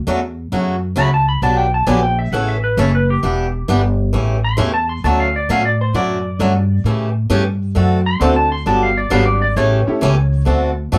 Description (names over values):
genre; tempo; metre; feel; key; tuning
country, western swing; 133 BPM; 4/4; swing 67% on 8ths; D major; A4 = 438 Hz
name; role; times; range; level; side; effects
upright bass; bass; 0.0-11.0 s; E1 to A2; -19 LUFS; equal; none
picked swing-style acoustic guitar; accompaniment; 0.1-11.0 s; C#3 to A4; -21 LUFS; equal; none
clean lap steel guitar; second line; 1.0-10.4 s; G4 to C6; -22 LUFS; equal; none
bright upright piano; accompaniment; 8.2-10.0 s; G3 to A4; -23 LUFS; equal; none
room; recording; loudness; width
light reverb; none; -16 LUFS; mono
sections
0.0-11.0 A section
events
electric slide guitar solo 0.0-11.0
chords
0.0 Dmaj7; 0.5 F#m; 1.4 Gmaj7; 2.3 A; 3.2 Em7; 4.1 A7; 5.0 Dmaj7; 6.8 A7; 7.8 D7; 8.7 Gmaj7; 9.6 A7; 10.5 D7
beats
0.06 0.51 0.97 | 1.42 1.87 2.32 2.78 | 3.23 3.68 4.13 4.59 | 5.04 5.49 5.94 6.40 | 6.85 7.30 7.75 8.21 | 8.66 9.11 9.57 10.02 | 10.47 10.93